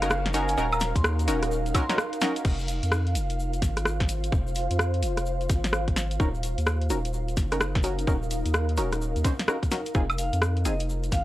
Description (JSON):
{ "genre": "UK garage, two-step garage", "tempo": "128 BPM", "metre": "4/4", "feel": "swing 63% on 16ths", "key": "F phrygian", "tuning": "A4 = 440 Hz", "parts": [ { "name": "vibraphone with medium hard mallets", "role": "melody", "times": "0.0-1.9, 10.2-11.2 s", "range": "Eb5 to C6", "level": "-32 LUFS", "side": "equal", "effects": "analog delay" }, { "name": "soft string machine", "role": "sustained chords", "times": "0.0-2.4 s", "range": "Db4 to F5", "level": "-40 LUFS", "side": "equal", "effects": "none" }, { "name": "punchy chord stab", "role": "stabs", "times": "0.0-2.4, 6.2-10.7 s", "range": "C4 to C5", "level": "-30 LUFS", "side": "equal", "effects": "chorus, analog delay" }, { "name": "saturated sub bass", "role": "bass", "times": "0.0-11.2 s", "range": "Eb1 to F2", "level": "-28 LUFS", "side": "equal", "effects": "none" }, { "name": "garage drum kit", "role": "drums", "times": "0.0-11.2 s", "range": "crash cymbal, hi-hat, rim click, snare drum, woodblock", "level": "-29 LUFS", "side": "equal", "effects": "none" }, { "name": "egg shaker", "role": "percussion", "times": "0.0-11.2 s", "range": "none", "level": "-44 LUFS", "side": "left 2 dB", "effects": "none" }, { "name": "ethereal airy pad", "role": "texture", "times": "0.0-11.2 s", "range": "Eb4 to F5", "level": "-34 LUFS", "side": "right 1 dB", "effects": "ensemble chorus, built-in reverb, sidechain pumping" }, { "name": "electronic kick drum", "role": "drums", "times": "1.0-11.2 s", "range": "none", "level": "-27 LUFS", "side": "equal", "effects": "none" } ], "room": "digital ambience", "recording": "dry, gritty hardware recording, faint mains hum", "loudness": "-24 LUFS", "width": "side -15 dB against mid", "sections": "0.0-2.5 A section; 2.5-11.2 B section", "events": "drop 0.0-2.5", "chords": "0.0 Ebm7; 2.5 Fm7; 6.2 Ebm7; 9.9 Fm7", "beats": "0.11 | 0.57 1.04 1.51 1.98 | 2.45 2.92 3.39 3.86 | 4.33 4.79 5.26 5.73 | 6.20 6.67 7.14 7.61 | 8.07 8.54 9.01 9.48 | 9.95 10.42 10.89" }